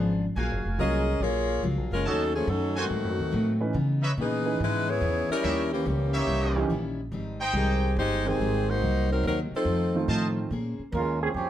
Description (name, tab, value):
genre	jazz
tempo	142 BPM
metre	4/4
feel	swing 67% on 8ths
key	Ab major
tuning	A4 = 442 Hz
part	warm saxophone section	melody	0.0-10.1 s	Eb3 to Eb5	-27 LUFS	left 1 dB	none
part	picked steel-string acoustic guitar	accompaniment	0.0-11.5 s	F2 to C5	-34 LUFS	left 3 dB	none
part	upright bass	bass	0.0-11.5 s	F1 to Db3	-28 LUFS	equal	none
part	bright trumpet section	stabs	0.4-10.3 s	Eb4 to A5	-31 LUFS	right 1 dB	none
part	warm grand piano	accompaniment	0.8-1.0, 3.6-10.5 s	Eb3 to G5	-31 LUFS	right 4 dB	none
part	mellow trombone section	second line	10.9-11.5 s	F3 to Bb4	-27 LUFS	right 5 dB	none
room	moderate large studio reverb, RT60 0.8 s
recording	dark, warm production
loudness	-24 LUFS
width	side -11 dB against mid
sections	0.0-10.5 A section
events	none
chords	0.4 Gbmaj9; 2.1 Ebm7b5; 2.9 Ab7b9; 3.7 Dbm9; 5.4 Eb7b9; 7.1 Abmaj7; 8.8 Cm7b5; 9.7 F7; 10.5 Bbm9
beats	| 0.36 0.79 1.21 1.63 | 2.06 2.48 2.90 3.33 | 3.75 4.17 4.59 5.02 | 5.44 5.86 6.28 6.71 | 7.13 7.55 7.97 8.40 | 8.82 9.24 9.66 10.09 | 10.51 10.93 11.35